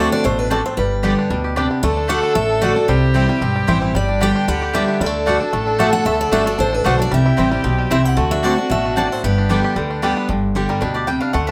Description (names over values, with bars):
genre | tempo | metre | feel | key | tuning
bluegrass | 227 BPM | 4/4 | straight | G major | A4 = 440 Hz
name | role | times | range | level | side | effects
bluegrass banjo | melody | 0.0-11.5 s | D3 to G4 | -27 LUFS | equal | none
picked steel-string acoustic guitar | melody | 0.0-10.0 s | A4 to G5 | -25 LUFS | equal | none
picked steel-string acoustic guitar | accompaniment | 0.0-11.5 s | G2 to G4 | -23 LUFS | equal | none
mandolin | stabs | 0.0-11.5 s | A3 to A5 | -25 LUFS | equal | none
upright bass | bass | 0.0-11.5 s | G1 to D2 | -24 LUFS | equal | none
rich fiddle | second line | 1.8-10.2 s | F#4 to A4 | -25 LUFS | equal | none
room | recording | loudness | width
moderate studio reverb, RT60 0.9 s | none | -17 LUFS | mono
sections
0.0-10.3 A section; 10.3-11.5 B section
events
mandolin solo 10.3-11.5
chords
0.0 D7; 0.8 G; 1.8 D; 2.9 C; 3.9 G; 5.0 D; 7.1 C; 8.2 D7; 9.2 G